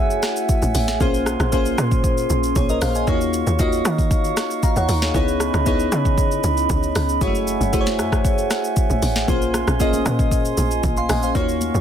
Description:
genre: amapiano.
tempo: 116 BPM.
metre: 4/4.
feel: straight.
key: Bb minor.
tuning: A4 = 442 Hz.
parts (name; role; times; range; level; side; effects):
crystalline FM electric piano; accompaniment; 0.0-11.8 s; Ab3 to C6; -22 LUFS; left 2 dB; chorus.
glass harmonica; sustained chords; 0.0-11.8 s; Db4 to Db6; -26 LUFS; right 4 dB; sidechain pumping.
tight log drum bass; bass; 0.0-11.8 s; Gb1 to Eb3; -23 LUFS; equal; none.
afro-pop drum kit; drums; 0.1-11.8 s; hi-hat, kick drum, rim click, shaker, snare drum; -22 LUFS; equal; soft clipping on snare.
congas; percussion; 9.3-11.7 s; none; -32 LUFS; right 3 dB; none.
room: little or no reverb.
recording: dense, heavily limited modern master.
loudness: -17 LUFS.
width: side -9 dB against mid.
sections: 0.0-11.8 A section.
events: none.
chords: 0.0 Gbm9; 1.0 Bbm9; 3.1 Ebm9; 5.1 Dbm9; 7.2 Gbm9; 9.3 Bbm9.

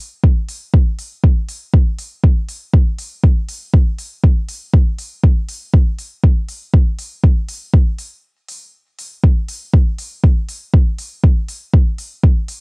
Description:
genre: techno.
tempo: 120 BPM.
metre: 4/4.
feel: swing 54% on 16ths.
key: none.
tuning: none.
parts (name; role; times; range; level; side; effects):
electronic kick drum; drums; 0.2-12.3 s; none; -11 LUFS; equal; cassette tape.
electronic hi-hat; drums; 0.5-12.6 s; none; -32 LUFS; equal; cassette tape.
room: digital ambience.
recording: home recording on cassette.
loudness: -13 LUFS.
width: side -40 dB against mid.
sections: 0.0-12.6 A section.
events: break 8.2-9.2.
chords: none.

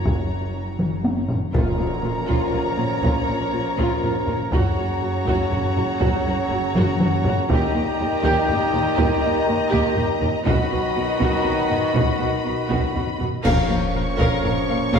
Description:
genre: cinematic, epic orchestral film score.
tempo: 121 BPM.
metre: 3/4.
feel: straight.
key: Bb phrygian.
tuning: A4 = 442 Hz.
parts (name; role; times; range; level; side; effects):
warm symphonic violin section; melody; 0.0-15.0 s; Bb5 to Db6; -31 LUFS; left 3 dB; none.
rich symphonic violin section; second line; 0.0-15.0 s; Db5 to F5; -29 LUFS; left 4 dB; none.
rich symphonic viola section; accompaniment; 0.0-15.0 s; F4 to Bb4; -28 LUFS; right 1 dB; none.
dark French horn section; sustained chords; 0.0-15.0 s; Gb3 to D#4; -30 LUFS; left 2 dB; none.
rich symphonic cello section; bass; 0.0-15.0 s; Eb2 to B2; -28 LUFS; right 2 dB; none.
rich symphonic double bass section; bass; 0.0-15.0 s; Gb1 to Eb2; -28 LUFS; right 2 dB; none.
taiko ensemble; drums; 0.1-15.0 s; none; -24 LUFS; equal; none.
clear trombone section; sustained chords; 1.5-15.0 s; Bb2 to Gb3; -29 LUFS; right 2 dB; none.
warm trumpet; stabs; 1.5-15.0 s; F#4 to Db5; -28 LUFS; equal; none.
tam-tam, clash cymbals and concert bass drum; percussion; 1.5-3.5, 13.5-14.4 s; none; -32 LUFS; left 1 dB; none.
impact; sound effects; 1.5-3.0 s; none; -35 LUFS; left 1 dB; none.
timpani; percussion; 13.4-14.1 s; Bb2; -29 LUFS; left 4 dB; none.
room: wet scoring stage reverb, RT60 1.7 s.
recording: heard from further back in the room.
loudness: -19 LUFS.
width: side -6 dB against mid.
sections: 0.0-1.5 A section; 1.5-13.4 B section; 13.4-15.0 C section.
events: drum fill 0.8-1.5, 6.8-7.5; band accent 1.5-2.0, 13.4-13.9; impact 1.5-3.0.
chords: 0.0 Gb; 1.5 Bbm; 4.5 Gb; 7.5 Eb; 10.5 B; 13.4 Bbm.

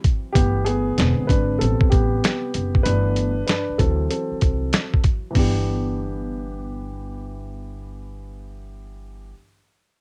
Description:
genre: hip hop, jazz-hop.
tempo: 96 BPM.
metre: 4/4.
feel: swing 66% on 16ths.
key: G major.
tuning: A4 = 442 Hz.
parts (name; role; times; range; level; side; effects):
dark upright piano; accompaniment; 0.0-9.3 s; C3 to B4; -28 LUFS; equal; cassette tape.
dusty soul sampler-style drum kit; drums; 0.0-5.5 s; hi-hat, kick drum, snare drum; -22 LUFS; equal; cassette tape.
upright bass; bass; 0.4-9.3 s; E1 to D2; -27 LUFS; equal; none.
room: little or no reverb.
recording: home recording on cassette.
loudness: -21 LUFS.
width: mono.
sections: 0.0-5.3 A section; 5.3-7.8 B section.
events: upright piano solo 0.0-5.3.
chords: 0.3 G6; 1.0 E7b13; 1.6 Am9; 2.8 G6; 3.8 D9; 5.3 G6.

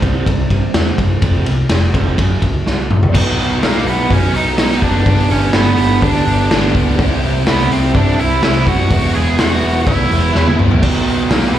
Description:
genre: quiet-loud alternative rock.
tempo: 125 BPM.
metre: 4/4.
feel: straight.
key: unclear.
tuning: A4 = 440 Hz.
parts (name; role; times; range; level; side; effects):
raw garage guitar; riff; 0.0-11.6 s; F2 to E4; -19 LUFS; right 7 dB; overdrive, slapback echo.
overdriven picked electric bass; bass; 0.0-11.6 s; E1 to G2; -18 LUFS; left 1 dB; none.
raw garage drum kit; drums; 0.0-11.6 s; crash cymbal, hi-hat, kick drum, ride cymbal, snare drum, toms; -15 LUFS; left 1 dB; none.
crunchy overdriven guitar; riff; 3.1-11.6 s; G2 to E4; -23 LUFS; left 14 dB; slapback echo.
octave-fuzz lead guitar; melody; 3.6-11.6 s; A#3 to G#5; -18 LUFS; right 1 dB; distortion, slapback echo.
room: small room ambience.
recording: live gig heard through the venue's PA, club reverb.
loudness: -12 LUFS.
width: side -11 dB against mid.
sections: 0.0-3.1 A section; 3.1-11.6 B section.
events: drum fill 2.7-3.1, 10.3-10.8.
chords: 0.0 C5; 1.2 F5; 2.2 F#; 3.1 B; 5.1 G; 7.0 C; 8.9 E; 10.8 B.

